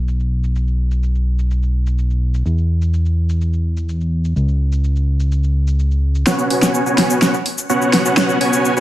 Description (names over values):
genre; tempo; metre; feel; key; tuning
EDM, festival progressive house; 126 BPM; 4/4; straight; unclear; A4 = 439 Hz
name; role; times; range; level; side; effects
fat analog bass; bass; 0.0-6.2 s; B1 to E2; -15 LUFS; equal; none
big-room dance drum kit; drums; 0.1-8.8 s; hi-hat, shaker, snare drum; -18 LUFS; equal; overdrive, low-pass filter on perc, low-pass filter on snare, low-pass filter on hats
big supersaw lead; riff; 6.3-8.8 s; B3 to G#5; -15 LUFS; equal; low-pass filter, tape echo
room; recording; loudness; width
light reverb; none; -15 LUFS; side -14 dB against mid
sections
0.0-6.3 A section; 6.3-8.8 B section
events
build-up 6.3-8.8; drum fill 6.3-8.8; filter sweep on supersaw synth 6.3-8.8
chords
0.0 N.C.; 6.3 Bsus2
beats
0.08 | 0.55 1.03 1.50 1.98 | 2.46 2.93 3.41 3.89 | 4.36 4.84 5.32 5.79 | 6.27 6.74 7.22 7.70 | 8.17 8.65